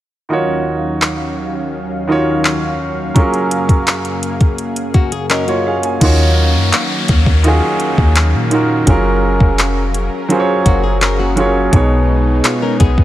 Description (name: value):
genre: contemporary R&B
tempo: 84 BPM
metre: 4/4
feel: straight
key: Eb minor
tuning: A4 = 441 Hz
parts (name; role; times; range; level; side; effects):
- warm baby grand piano; accompaniment; 0.3-13.0 s; B2 to Ab5; -16 LUFS; right 2 dB; none
- warm analog pad; sustained chords; 0.3-13.0 s; Eb2 to F5; -22 LUFS; left 1 dB; chorus
- smooth R&B drum kit; drums; 1.0-13.0 s; crash cymbal, handclaps, hi-hat, kick drum; -15 LUFS; equal; none
- flamenco guitar; arpeggios; 4.9-6.0, 10.7-13.0 s; Bb3 to C#5; -21 LUFS; left 6 dB; digital delay
- clean 808-style bass; bass; 6.0-13.0 s; F1 to Bb2; -14 LUFS; equal; none
- downlifter; sound effects; 6.0-11.7 s; none; -24 LUFS; left 1 dB; none
room: light reverb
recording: none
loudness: -12 LUFS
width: side -14 dB against mid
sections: 0.3-6.0 A section; 6.0-13.0 B section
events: none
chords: 0.3 Ebm7; 3.2 Gbmaj9; 6.0 Ebm7; 8.9 Gbmaj9; 11.7 B69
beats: | 0.30 1.01 1.73 2.44 | 3.16 3.87 4.58 5.30 | 6.01 6.73 7.44 8.16 | 8.87 9.59 10.30 11.01 | 11.73 12.44